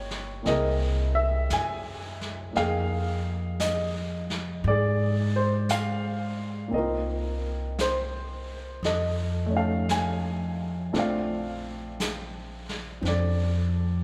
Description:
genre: jazz ballad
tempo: 57 BPM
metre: 4/4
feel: swing 66% on 8ths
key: unclear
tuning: A4 = 440 Hz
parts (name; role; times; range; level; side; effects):
- dark baby grand piano; accompaniment; 0.0-14.0 s; A3 to G#5; -31 LUFS; equal; none
- upright bass; bass; 0.0-14.0 s; G1 to Ab2; -31 LUFS; equal; none
- vintage brush drum kit; drums; 0.1-14.0 s; brushed snare drum, hi-hat, snare drum; -39 LUFS; equal; none
room: wet church reverb, RT60 3.0 s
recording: recorded in a church or concert hall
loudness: -28 LUFS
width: mono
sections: 0.0-14.0 A section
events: none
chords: 0.5 Caug7; 2.5 Fm11; 6.7 Cm7; 8.8 F7alt; 10.9 Bbmaj9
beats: 0.45 1.50 | 2.54 3.59 4.64 5.68 | 6.73 7.78 8.83 9.88 | 10.93 11.98 13.03

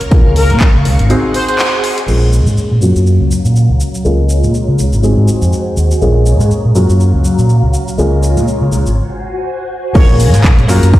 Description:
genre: filtered disco house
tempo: 122 BPM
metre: 4/4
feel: swing 57% on 16ths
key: Bb minor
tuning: A4 = 441 Hz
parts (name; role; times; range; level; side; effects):
- dark baby grand piano; accompaniment; 0.0-11.0 s; Gb3 to C5; -17 LUFS; left 1 dB; phaser, sidechain pumping, low-pass filter
- phased string machine; sustained chords; 0.0-11.0 s; Gb3 to F6; -21 LUFS; equal; ensemble chorus, phaser, sidechain pumping, low-pass filter
- house drum kit; drums; 0.0-11.0 s; crash cymbal, handclaps, hi-hat, shaker; -22 LUFS; equal; overdrive, sidechain pumping on hats, sidechain pumping on cymbals, sidechain pumping on perc
- overdriven fingered electric bass; bass; 0.1-11.0 s; Ab1 to Db3; -10 LUFS; equal; tube saturation, sidechain pumping, low-pass filter
- electronic kick drum; drums; 0.1-0.7, 10.0-11.0 s; none; -7 LUFS; equal; overdrive
- analog synth brass; melody; 0.4-1.6, 10.0-10.1 s; Bb4 to Db5; -21 LUFS; equal; chorus, sidechain pumping, low-pass filter, tape echo
room: light reverb, digital ambience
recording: played on a big sound system in a bare room, stone room reverb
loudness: -9 LUFS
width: side -15 dB against mid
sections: 0.0-2.1 A section; 2.1-10.0 B section; 10.0-11.0 C section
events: filter sweep 0.0-2.1; break 1.1-2.1, 9.0-10.0; band accent 1.6; drop 10.0-11.0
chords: 0.1 Db6; 1.1 Ab7; 2.1 Bbm7; 2.8 Gbmaj7; 4.0 Db6; 5.0 Ab7; 6.0 Bbm7; 6.8 Gbmaj7; 8.0 Db6; 9.0 Ab7; 10.0 Bbm7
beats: | 0.12 0.61 1.10 1.59 | 2.08 2.58 3.07 3.56 | 4.05 4.54 5.03 5.53 | 6.02 6.51 7.00 7.49 | 7.99 8.48 8.97 9.46 | 9.95 10.44 10.94

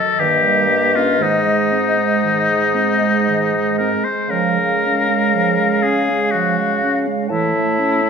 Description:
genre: classical, slow romantic movement for wind quintet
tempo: 59 BPM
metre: 3/4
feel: rubato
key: Db major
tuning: A4 = 441 Hz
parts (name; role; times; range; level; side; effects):
- silver concert flute; melody; 0.0-8.1 s; Eb5 to A5; -23 LUFS; left 4 dB; none
- clear oboe; second line; 0.0-8.1 s; Eb4 to C5; -18 LUFS; left 3 dB; none
- dark clarinet; accompaniment; 0.0-8.1 s; Eb3 to C#4; -23 LUFS; right 6 dB; none
- mellow French horn; accompaniment; 0.2-8.1 s; Ab3 to Bb3; -24 LUFS; right 3 dB; none
- dark bassoon; bass; 0.2-8.1 s; G2 to Db3; -21 LUFS; right 1 dB; none
room: moderate recital hall reverb, RT60 1.5 s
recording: minimal, uncompressed stereo recording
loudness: -14 LUFS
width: side -6 dB against mid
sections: 0.0-8.1 A section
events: none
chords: 0.2 Eb7/G; 1.2 Ab; 4.3 Db; 7.3 A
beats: 0.19 | 1.20 2.22 3.25 | 4.28 5.31 6.32 | 7.29

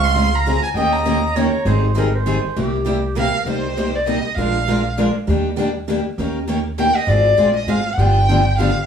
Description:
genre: acoustic string swing (jazz manouche)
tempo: 199 BPM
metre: 3/4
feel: swing 58% on 8ths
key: C minor from 3.5 s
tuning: A4 = 440 Hz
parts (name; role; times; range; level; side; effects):
- warm violin; melody; 0.0-8.9 s; C5 to C6; -19 LUFS; equal; slapback echo
- growling clarinet; second line; 0.0-3.5 s; G4 to F5; -23 LUFS; right 3 dB; none
- picked steel-string acoustic guitar; accompaniment; 0.0-8.7 s; C3 to Bb4; -23 LUFS; left 3 dB; none
- picked steel-string acoustic guitar; accompaniment; 0.0-8.7 s; C3 to Bb4; -23 LUFS; right 2 dB; none
- upright bass; bass; 0.0-8.7 s; G1 to Eb2; -21 LUFS; equal; none
room: wet studio ambience, RT60 0.5 s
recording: heard from further back in the room, studio reverb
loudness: -16 LUFS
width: side -8 dB against mid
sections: 0.0-3.5 A section; 3.5-8.9 B section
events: none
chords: 0.0 Dbmaj7; 0.8 Eb7; 1.7 Abmaj7; 2.6 C7; 3.5 Cm7; 4.4 Bb7; 5.3 Ebmaj7; 6.2 Eb7; 7.1 Ab69; 8.0 G7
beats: 0.16 0.46 | 0.76 1.06 1.36 | 1.66 1.96 2.26 | 2.56 2.86 3.16 | 3.46 3.77 4.07 | 4.37 4.67 4.97 | 5.27 5.57 5.88 | 6.18 6.48 6.78 | 7.08 7.38 7.68 | 7.99 8.29 8.59

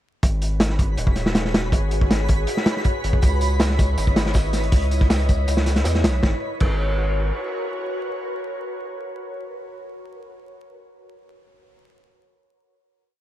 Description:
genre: drum and bass, jungle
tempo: 160 BPM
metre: 4/4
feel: straight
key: G# minor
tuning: A4 = 440 Hz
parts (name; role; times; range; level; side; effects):
- ethereal airy pad; sustained chords; 0.6-10.0 s; E4 to D#5; -29 LUFS; equal; ensemble chorus, built-in reverb, vintage 12-bit sampler grit
- saturated sub bass; bass; 0.2-7.3 s; D#1 to E2; -22 LUFS; equal; none
- crunchy breakbeat drum kit; drums; 0.2-6.7 s; crash cymbal, hi-hat, kick drum, snare drum; -20 LUFS; equal; none
- twinkling granular texture; texture; 0.7-6.2 s; B5; -34 LUFS; right 2 dB; built-in reverb
- crunchy breakbeat drum kit; drums; 3.2-6.1 s; hi-hat, snare drum, tambourine; -34 LUFS; right 1 dB; high-pass filter on hats, high-pass filter on snare, high-pass filter on perc, high-pass filter on room
room: small room ambience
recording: dark, warm production, vinyl crackle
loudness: -18 LUFS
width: side -13 dB against mid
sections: 0.2-6.2 drop; 6.2-9.2 final chord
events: drop 0.2-6.2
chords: 0.2 G#m7; 3.2 C#m9; 6.2 G#m11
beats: | 0.23 0.60 0.98 1.35 | 1.73 2.10 2.48 2.85 | 3.23 3.60 3.98 4.35 | 4.73 5.10 5.48 5.85 | 6.23 6.60 6.98 7.35 | 7.73 8.10 8.48 8.85

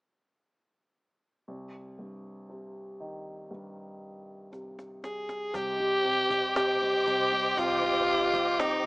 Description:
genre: pop ballad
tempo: 59 BPM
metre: 4/4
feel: straight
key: C minor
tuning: A4 = 439 Hz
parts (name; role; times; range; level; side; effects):
- warm concert grand piano; accompaniment; 1.5-8.9 s; C2 to G3; -36 LUFS; equal; none
- cajon; drums; 4.5-8.8 s; none; -35 LUFS; equal; none
- raspy alto saxophone; melody; 5.0-8.9 s; Eb4 to Ab4; -26 LUFS; equal; none
- warm studio string section; sustained chords; 5.5-8.9 s; C5 to D6; -32 LUFS; equal; none
- vintage muted fingered electric bass; bass; 5.5-8.9 s; C2; -47 LUFS; equal; none
room: light reverb, studio reverb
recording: rough home demo mix, small speaker sound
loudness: -24 LUFS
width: side -34 dB against mid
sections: 1.5-5.5 A section; 5.5-8.9 B section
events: drum fill 4.5-5.5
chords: 1.5 Cm; 5.5 Cmadd9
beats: | 1.48 2.49 3.51 4.53 | 5.54 6.56 7.58 8.59

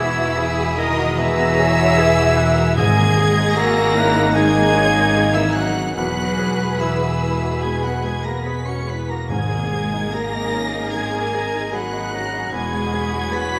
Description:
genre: cinematic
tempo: 74 BPM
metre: 4/4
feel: uneven beats, rubato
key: G# minor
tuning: A4 = 440 Hz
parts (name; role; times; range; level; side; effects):
- warm studio violin section; melody; 0.0-13.6 s; D#6 to C#7; -30 LUFS; equal; none
- rich studio violin section; second line; 0.0-13.6 s; C#4 to C#5; -29 LUFS; equal; none
- silver concert flute; second line; 0.0-13.6 s; D#5 to C#6; -27 LUFS; equal; none
- warm oboe; second line; 0.0-13.6 s; D#5 to B5; -28 LUFS; equal; none
- clear grand piano; accompaniment; 0.0-13.6 s; E2 to G#4; -29 LUFS; equal; none
- rich studio viola section; accompaniment; 0.0-13.6 s; E4 to D#5; -30 LUFS; equal; none
- mellow French horn section; sustained chords; 0.0-13.6 s; F#3 to F#4; -29 LUFS; equal; none
- rich studio double bass section; bass; 0.0-13.6 s; E1 to G#1; -27 LUFS; equal; none
- warm studio cello section; bass; 0.0-13.6 s; D#3 to C#4; -28 LUFS; equal; none
- timpani; percussion; 2.8-3.9, 9.3-10.5 s; G#2; -26 LUFS; equal; none
room: wet concert hall reverb, RT60 2.2 s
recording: none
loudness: -19 LUFS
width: mono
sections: 0.0-13.6 A section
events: none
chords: 0.0 Eadd9; 2.8 G#sus2; 6.0 Eadd9; 9.3 G#sus2; 12.5 Eadd9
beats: 0.37 1.17 1.97 | 2.76 3.55 4.34 5.13 | 5.95 6.79 7.61 8.45 | 9.30 10.13 10.94 11.73 | 12.53 13.32

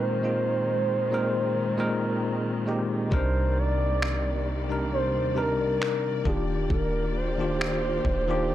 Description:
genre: contemporary R&B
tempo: 67 BPM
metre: 4/4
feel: swing 54% on 16ths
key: C minor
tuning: A4 = 440 Hz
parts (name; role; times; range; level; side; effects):
- gliding portamento lead; melody; 0.0-8.5 s; G4 to D5; -29 LUFS; equal; chorus, phaser, tape echo
- bell-like tine electric piano; accompaniment; 0.0-8.5 s; Bb2 to Bb4; -28 LUFS; left 1 dB; medium stereo tremolo
- warm studio string section; sustained chords; 0.0-8.5 s; C3 to D5; -34 LUFS; left 1 dB; none
- warm 808-style bass; bass; 3.1-8.5 s; Eb1 to Eb2; -29 LUFS; equal; none
- dusty soul sampler-style drum kit; drums; 3.1-8.3 s; finger snaps, kick drum; -30 LUFS; equal; none
room: little or no reverb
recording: dry, gritty hardware recording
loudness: -24 LUFS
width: side -12 dB against mid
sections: 0.0-8.5 A section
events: none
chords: 0.0 Bb9sus4; 3.1 Cm9; 6.3 Ebmaj9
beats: 0.43 1.33 2.22 | 3.12 4.01 4.91 5.81 | 6.70 7.60 8.49

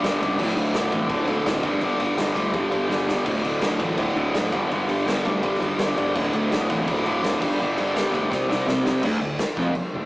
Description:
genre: garage rock duo or trio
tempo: 167 BPM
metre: 4/4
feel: straight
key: unclear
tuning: A4 = 439 Hz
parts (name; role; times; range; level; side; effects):
- fuzz guitar; riff; 0.0-10.1 s; D2 to C4; -22 LUFS; equal; distortion
- fuzz fingered electric bass; bass; 0.0-10.1 s; D1 to G2; -30 LUFS; equal; overdrive
- raw garage drum kit; drums; 0.0-9.8 s; crash cymbal, kick drum, ride cymbal, snare drum; -26 LUFS; equal; none
room: moderate studio reverb, RT60 0.6 s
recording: rough rehearsal-room recording, small speaker sound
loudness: -20 LUFS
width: side -21 dB against mid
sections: 0.0-9.0 A section; 9.0-10.1 B section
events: drum fill 2.9-3.3, 8.3-9.0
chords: 0.4 D5; 1.6 G5; 3.3 D5; 4.5 G5; 6.2 D5; 7.4 G5; 8.3 C5; 9.0 Dm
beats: 0.04 | 0.40 0.75 1.11 1.47 | 1.83 2.19 2.54 2.90 | 3.26 3.62 3.98 4.34 | 4.71 5.07 5.43 5.79 | 6.15 6.51 6.87 7.24 | 7.60 7.96 8.32 8.68 | 9.04 9.40 9.76

